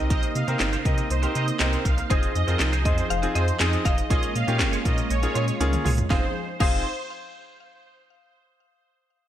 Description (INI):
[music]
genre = dance-pop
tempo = 120 BPM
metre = 4/4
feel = straight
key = F minor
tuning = A4 = 440 Hz
[part]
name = mallet-like synth pluck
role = melody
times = 0.0-6.8 s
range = C5 to F5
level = -33 LUFS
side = left 5 dB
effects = chorus, digital delay
[part]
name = bright grand piano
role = accompaniment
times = 0.0-6.8 s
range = Bb3 to Bb4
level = -30 LUFS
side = left 1 dB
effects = none
[part]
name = warm analog pad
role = sustained chords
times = 0.0-6.3 s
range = C3 to Ab4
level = -33 LUFS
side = right 2 dB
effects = chorus, sidechain pumping
[part]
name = twelve-string electric guitar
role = riff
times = 0.0-6.8 s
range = Eb4 to Db5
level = -34 LUFS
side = right 6 dB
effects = ensemble chorus
[part]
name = sub bass with octave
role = bass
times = 0.0-6.8 s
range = F1 to C3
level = -26 LUFS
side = equal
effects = sidechain pumping
[part]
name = filtered supersaw swell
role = melody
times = 0.1-6.8 s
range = C5 to F5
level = -31 LUFS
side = right 3 dB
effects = phaser, digital delay
[part]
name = house drum kit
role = drums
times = 0.1-6.7 s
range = crash cymbal, handclaps, hi-hat, kick drum, snare drum, toms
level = -25 LUFS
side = equal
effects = gated reverb
[sound]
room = light reverb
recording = bright 1980s-style digital production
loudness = -21 LUFS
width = side -11 dB against mid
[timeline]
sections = 0.0-6.1 A section; 6.1-8.1 B section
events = drum fill 5.6-6.1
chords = 0.0 Cm7; 2.1 Fm7; 4.1 Bbm7; 6.1 Fm7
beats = | 0.10 0.60 1.10 1.60 | 2.10 2.60 3.10 3.60 | 4.10 4.60 5.10 5.60 | 6.10 6.60